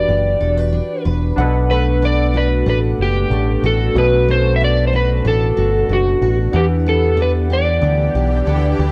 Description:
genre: indie pop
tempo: 93 BPM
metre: 4/4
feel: straight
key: E minor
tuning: A4 = 440 Hz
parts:
  - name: electric slide guitar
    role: melody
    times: 0.0-8.8 s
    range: F#4 to E5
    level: -21 LUFS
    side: equal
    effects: lush chorus, slapback echo
  - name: picked steel-string acoustic guitar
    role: accompaniment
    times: 0.0-8.9 s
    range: B2 to B4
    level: -25 LUFS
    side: equal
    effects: lush chorus, vibrato effect
  - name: warbly lo-fi synth keys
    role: accompaniment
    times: 0.0-8.9 s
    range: C#4 to F#5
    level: -26 LUFS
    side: equal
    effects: chorus, phaser
  - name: picked electric bass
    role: bass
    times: 0.0-8.9 s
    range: E1 to E2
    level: -19 LUFS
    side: equal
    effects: none
  - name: shimmering ambient pad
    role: sustained chords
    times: 7.4-8.9 s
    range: E3 to G4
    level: -29 LUFS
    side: equal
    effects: chorus, built-in reverb
room: light reverb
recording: none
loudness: -16 LUFS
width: mono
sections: 0.0-8.9 A section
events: none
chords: 0.0 Em7; 1.4 Bm7; 6.5 Em7

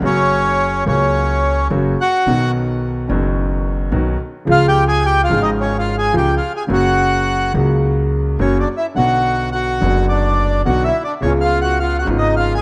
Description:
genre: tango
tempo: 107 BPM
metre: 4/4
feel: rubato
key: B harmonic minor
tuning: A4 = 441 Hz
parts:
  - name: bandoneon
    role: melody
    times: 0.0-12.6 s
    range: C#4 to G#5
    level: -19 LUFS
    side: equal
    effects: none
  - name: warm grand piano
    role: accompaniment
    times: 0.0-12.6 s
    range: F#1 to F#4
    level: -22 LUFS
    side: equal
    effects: none
  - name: upright bass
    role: bass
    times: 0.0-12.6 s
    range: F#1 to C#2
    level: -22 LUFS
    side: equal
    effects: none
room: moderate plate reverb, RT60 2.4 s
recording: rough home demo mix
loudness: -16 LUFS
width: mono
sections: 0.0-12.6 A section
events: none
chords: 0.0 F#; 2.3 B; 4.5 C#; 6.7 F#; 9.0 Bm; 11.2 C#7

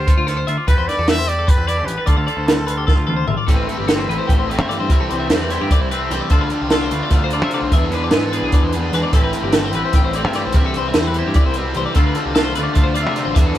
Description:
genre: math rock and midwest emo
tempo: 298 BPM (eighths)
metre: 7/8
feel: straight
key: A minor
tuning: A4 = 440 Hz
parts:
  - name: clear trumpet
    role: melody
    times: 0.0-3.3 s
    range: A4 to E5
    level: -23 LUFS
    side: equal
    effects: none
  - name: twangy electric guitar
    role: accompaniment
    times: 0.0-13.6 s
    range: E2 to G#4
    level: -28 LUFS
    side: right 4 dB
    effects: none
  - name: twelve-string electric guitar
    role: arpeggios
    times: 0.0-13.6 s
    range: F4 to G5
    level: -24 LUFS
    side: left 6 dB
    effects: analog delay
  - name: growling picked electric bass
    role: bass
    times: 0.0-13.6 s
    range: G1 to C3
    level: -23 LUFS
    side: equal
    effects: overdrive
  - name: compact cocktail drum kit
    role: drums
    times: 0.1-13.6 s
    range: hi-hat, kick drum, snare drum, toms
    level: -16 LUFS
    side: equal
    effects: none
  - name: raw garage guitar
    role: riff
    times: 3.5-13.6 s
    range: A2 to G#4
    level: -22 LUFS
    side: left 1 dB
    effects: overdrive
room: moderate studio reverb, RT60 0.6 s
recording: band playing live in one room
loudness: -15 LUFS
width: side -12 dB against mid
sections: 0.0-3.5 A section; 3.5-13.6 B section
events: drum fill 2.9-3.5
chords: 0.0 Dm7; 0.7 Em7; 2.1 Dm7; 3.5 Am7; 4.9 C6; 6.3 Dm7; 7.7 E7; 9.1 Am7; 10.6 C6; 12.0 Dm7

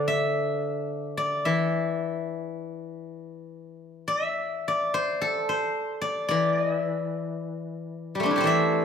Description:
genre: chinese traditional, Chinese solo plucked strings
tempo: 50-57 BPM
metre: 2/4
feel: rubato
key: unclear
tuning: A4 = 440 Hz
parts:
  - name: steel-string zither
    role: solo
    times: 0.0-8.8 s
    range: D3 to E5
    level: -25 LUFS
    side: left 1 dB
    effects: none
room: moderate recital hall reverb, RT60 1.5 s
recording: none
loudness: -24 LUFS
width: side -7 dB against mid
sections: 0.0-8.8 A section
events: none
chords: none

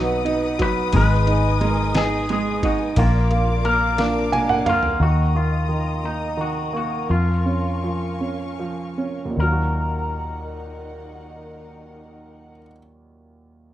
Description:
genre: six-eight pop ballad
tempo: 49-59 BPM (dotted quarters)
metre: 6/8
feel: straight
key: Eb minor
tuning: A4 = 439 Hz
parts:
  - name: electric guitar with an envelope filter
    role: melody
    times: 0.0-12.6 s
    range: D4 to B4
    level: -25 LUFS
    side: left 3 dB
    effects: digital delay
  - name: clear concert grand piano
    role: accompaniment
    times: 0.0-13.7 s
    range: Eb2 to Ab5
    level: -25 LUFS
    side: right 4 dB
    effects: none
  - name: warm symphonic string section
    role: sustained chords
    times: 0.0-12.6 s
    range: Eb3 to D#6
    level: -32 LUFS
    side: left 2 dB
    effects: none
  - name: fingerpicked steel-string acoustic guitar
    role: arpeggios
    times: 0.0-5.0 s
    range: Ab2 to B4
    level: -29 LUFS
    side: equal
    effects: none
  - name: vintage muted fingered electric bass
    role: bass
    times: 0.0-12.6 s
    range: Ab1 to F2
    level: -22 LUFS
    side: equal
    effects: none
  - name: lo-fi sampler-style drum kit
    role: drums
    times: 0.3-5.0 s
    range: kick drum, ride cymbal, snare drum, toms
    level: -26 LUFS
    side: equal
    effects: none
room: light reverb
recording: rough home demo mix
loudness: -18 LUFS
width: side -13 dB against mid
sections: 0.0-5.0 A section; 5.0-9.4 B section; 9.4-13.7 C section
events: drum fill 4.0-5.0; grand piano fill 4.0-5.0; slowing down 5.0-9.4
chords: 0.0 B; 0.9 Abm; 3.0 Bb; 5.0 Eb5; 7.1 Db6/F; 9.4 Ebm

